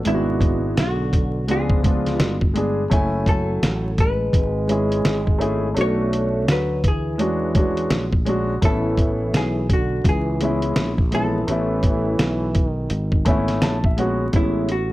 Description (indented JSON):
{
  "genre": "hip hop, jazz-hop",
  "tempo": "84 BPM",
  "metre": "4/4",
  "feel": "swing 62% on 16ths",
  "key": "A major",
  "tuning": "A4 = 440 Hz",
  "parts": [
    { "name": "vintage hollow-body jazz guitar", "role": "melody", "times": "0.0-14.9 s", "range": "E4 to C#5", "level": "-27 LUFS", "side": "equal", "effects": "none" },
    { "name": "mellow trombone", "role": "second line", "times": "0.0-13.6 s", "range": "B2 to A3", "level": "-28 LUFS", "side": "right 2 dB", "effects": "none" },
    { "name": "dark concert grand piano", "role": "accompaniment", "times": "0.0-14.9 s", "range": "G#3 to A5", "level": "-23 LUFS", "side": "left 1 dB", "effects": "none" },
    { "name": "sustaining fretless electric bass", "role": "bass", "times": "0.1-14.9 s", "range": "F#1 to E2", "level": "-24 LUFS", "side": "equal", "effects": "tube saturation" },
    { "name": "dusty soul sampler-style drum kit", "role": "drums", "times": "0.1-14.9 s", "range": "hi-hat, kick drum, snare drum", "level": "-20 LUFS", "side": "equal", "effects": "none" }
  ],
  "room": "digital ambience",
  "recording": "dry, gritty hardware recording, vinyl crackle",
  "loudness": "-18 LUFS",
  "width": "side -17 dB against mid",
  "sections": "0.0-14.3 A section",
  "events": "grand piano fill 12.9-14.3",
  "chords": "0.1 G#m7b5; 1.5 C#7b9; 2.9 F#m9; 5.8 Bm7; 7.2 E13; 8.6 Amaj9"
}